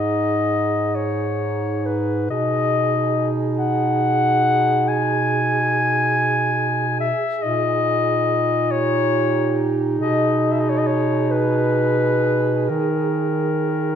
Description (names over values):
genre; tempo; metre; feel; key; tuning
classical, lyrical piece for single-reed quartet; 41-48 BPM (dotted quarters); 12/8; rubato; G# minor; A4 = 440 Hz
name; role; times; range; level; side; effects
clear clarinet; melody; 0.0-14.0 s; A#4 to G#5; -21 LUFS; left 4 dB; none
mellow alto saxophone; second line; 0.0-14.0 s; G4 to G#4; -27 LUFS; right 11 dB; none
mellow clarinet; accompaniment; 0.0-14.0 s; D#4; -26 LUFS; left 2 dB; none
clear bass clarinet; bass; 0.0-14.0 s; G#2 to D#3; -23 LUFS; right 3 dB; none
room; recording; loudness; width
wet recital hall reverb, RT60 1.5 s; none; -17 LUFS; side -8 dB against mid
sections
0.0-14.0 A section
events
none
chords
0.0 G#5; 2.3 G#m/B; 7.4 D#7/A#; 10.0 G#m/B; 12.7 D#5